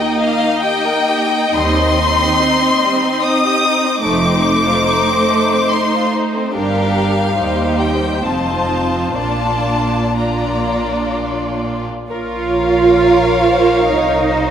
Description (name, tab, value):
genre	classical, slow romantic movement for string orchestra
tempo	60-75 BPM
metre	3/4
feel	rubato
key	Bb major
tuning	A4 = 440 Hz
part	rich chamber violin section	melody	0.0-14.5 s	Bb4 to Eb6	-18 LUFS	left 3 dB	none
part	rich chamber violin section	second line	0.0-14.5 s	G3 to F5	-19 LUFS	left 2 dB	none
part	rich symphonic viola section	accompaniment	0.0-14.5 s	G3 to Bb4	-19 LUFS	right 2 dB	none
part	rich studio double bass section	bass	1.5-14.5 s	F1 to Eb2	-24 LUFS	right 3 dB	none
part	warm studio cello section	bass	1.5-14.5 s	Eb2 to F4	-18 LUFS	right 3 dB	none
room	wet concert hall reverb, RT60 2.4 s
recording	none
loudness	-13 LUFS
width	side -9 dB against mid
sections	0.0-12.1 A section; 12.1-14.5 B section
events	none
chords	0.0 Eb; 1.5 Cm/Eb; 4.0 F7; 6.5 Gm7; 7.4 Cm/Eb; 8.2 F7; 9.2 Bb; 12.1 Bbm